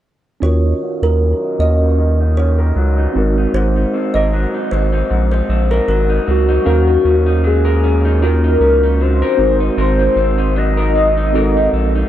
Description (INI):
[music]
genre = indie pop, bedroom pop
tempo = 77 BPM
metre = 4/4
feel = swing 55% on 16ths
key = Eb dorian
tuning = A4 = 441 Hz
[part]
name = kalimba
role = second line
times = 0.4-6.5 s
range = Bb4 to Eb5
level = -21 LUFS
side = right 2 dB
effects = lush chorus, analog delay
[part]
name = electric guitar through a small old amp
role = accompaniment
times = 0.4-12.1 s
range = Ab2 to Bb4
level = -22 LUFS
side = left 2 dB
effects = wide subtle chorus, warbly pitch drift, low-pass filter
[part]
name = mellow tine electric piano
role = accompaniment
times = 0.4-12.1 s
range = C4 to F5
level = -22 LUFS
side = right 3 dB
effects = medium stereo tremolo, low-pass filter
[part]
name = round analog bass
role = bass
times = 0.4-12.0 s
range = Ab1 to Eb2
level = -15 LUFS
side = equal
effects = none
[part]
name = soft octave-layered synth lead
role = melody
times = 6.3-12.1 s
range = Gb4 to Eb5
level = -16 LUFS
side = left 2 dB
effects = analog chorus, analog delay
[sound]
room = light reverb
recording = dark, warm production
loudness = -12 LUFS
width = side -12 dB against mid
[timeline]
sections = 0.4-6.7 A section; 6.7-12.1 B section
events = filter sweep 0.4-6.7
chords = 0.4 Ebm7; 3.2 Ab9; 6.7 Ebm7; 9.4 Ab9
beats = | 0.43 1.21 1.99 2.77 | 3.55 4.33 5.11 5.88 | 6.66 7.44 8.22 9.00 | 9.78 10.56 11.34